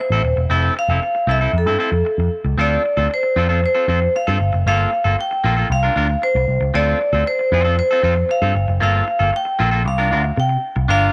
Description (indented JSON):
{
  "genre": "disco",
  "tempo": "115 BPM",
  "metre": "4/4",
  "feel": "straight",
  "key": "unclear",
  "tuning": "A4 = 436 Hz",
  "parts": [
    { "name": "vibraphone with hard mallets", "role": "melody", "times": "0.0-11.1 s", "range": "A4 to G5", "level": "-22 LUFS", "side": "equal", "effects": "none" },
    { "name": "electric guitar at the edge of break-up", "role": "accompaniment", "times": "0.0-11.1 s", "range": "Bb3 to Bb4", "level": "-24 LUFS", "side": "equal", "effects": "none" },
    { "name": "picked electric bass with an envelope filter", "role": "bass", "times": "0.1-11.1 s", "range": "Eb1 to C3", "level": "-21 LUFS", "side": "equal", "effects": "none" }
  ],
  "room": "light reverb, small room ambience",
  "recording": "none",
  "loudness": "-18 LUFS",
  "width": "mono",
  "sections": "0.0-2.6 A section; 2.6-10.9 B section",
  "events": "none",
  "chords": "0.0 Fmaj7; 2.6 Dm7; 4.4 Gm9; 5.7 C9sus4; 6.7 Dm7; 8.6 Gm9; 9.9 C9sus4"
}